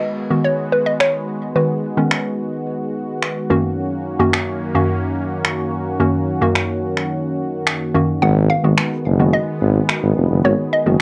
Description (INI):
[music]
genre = dance-pop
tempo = 108 BPM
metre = 4/4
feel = straight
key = G# minor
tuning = A4 = 442 Hz
[part]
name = hollow square pluck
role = melody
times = 0.0-2.6, 8.2-11.0 s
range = B4 to F#5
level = -22 LUFS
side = equal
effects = chorus
[part]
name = hollow square pluck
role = accompaniment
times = 0.0-11.0 s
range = F#2 to F#4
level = -21 LUFS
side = equal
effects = chorus
[part]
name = sweeping resonant pad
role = sustained chords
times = 0.0-11.0 s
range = F#2 to G#4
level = -25 LUFS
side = equal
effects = chorus
[part]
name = electronic finger snaps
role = drums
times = 1.0-10.0 s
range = none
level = -22 LUFS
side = equal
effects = overdrive
[part]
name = warm tuba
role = bass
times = 8.2-11.0 s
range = E#1 to G#1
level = -18 LUFS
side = equal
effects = none
[sound]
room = light reverb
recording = cassette tape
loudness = -18 LUFS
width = mono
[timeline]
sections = 0.0-11.0 A section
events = none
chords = 0.0 G#m7; 3.5 D#m7/F#; 8.2 G#m7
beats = 0.44 1.00 | 1.55 2.11 2.67 3.22 | 3.78 4.33 4.89 5.44 | 6.00 6.55 7.11 7.67 | 8.22 8.78 9.33 9.89 | 10.44 11.00